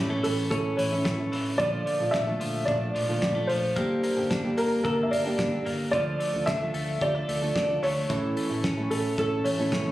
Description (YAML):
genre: jangly indie pop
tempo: 111 BPM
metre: 4/4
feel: straight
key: D minor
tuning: A4 = 439 Hz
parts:
  - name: dark upright piano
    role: melody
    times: 0.0-9.9 s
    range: A4 to E5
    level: -28 LUFS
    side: equal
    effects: ping-pong delay
  - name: fingerpicked plugged-in steel-string acoustic guitar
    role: accompaniment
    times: 0.0-9.9 s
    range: A2 to A4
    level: -30 LUFS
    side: right 2 dB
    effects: none
  - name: twelve-string electric guitar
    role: arpeggios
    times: 0.0-9.9 s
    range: E3 to A4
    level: -33 LUFS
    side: left 2 dB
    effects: none
  - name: vintage muted fingered electric bass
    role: bass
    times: 0.0-9.9 s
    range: G1 to D2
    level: -34 LUFS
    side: equal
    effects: none
  - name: cloth-damped thuddy drum kit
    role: drums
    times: 0.2-9.8 s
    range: hi-hat, kick drum, snare drum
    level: -33 LUFS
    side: equal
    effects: none
room: light reverb, small room ambience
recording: recorded on a phone in the room, studio reverb, compression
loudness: -24 LUFS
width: side -15 dB against mid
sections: 0.0-9.9 A section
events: none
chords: 0.0 A; 1.6 Bbmaj7; 3.8 Gmadd9; 5.9 Dm; 8.1 A